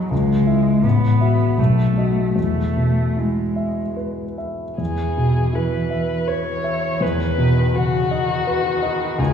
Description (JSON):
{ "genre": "classical, slow romantic movement for piano trio", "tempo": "72-85 BPM", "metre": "3/4", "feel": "rubato", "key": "E major", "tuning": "A4 = 440 Hz", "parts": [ { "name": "muted cello", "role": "second line", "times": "0.0-9.3 s", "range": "C#3 to B3", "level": "-23 LUFS", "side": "right 1 dB", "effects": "none" }, { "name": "dark grand piano", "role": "accompaniment", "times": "0.0-9.3 s", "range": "A1 to E5", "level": "-19 LUFS", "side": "left 1 dB", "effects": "none" }, { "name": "muted violin", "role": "melody", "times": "4.8-9.3 s", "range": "F#4 to C#5", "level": "-23 LUFS", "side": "left 2 dB", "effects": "none" } ], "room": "wet recital hall reverb, RT60 1.7 s", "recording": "heard from further back in the room, small room reverb", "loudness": "-17 LUFS", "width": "side -8 dB against mid", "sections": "0.0-4.8 A section; 4.8-9.3 A section", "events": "none", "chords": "0.1 C#m; 0.8 F#m7/A; 1.6 B7; 2.4 E; 7.0 B/E" }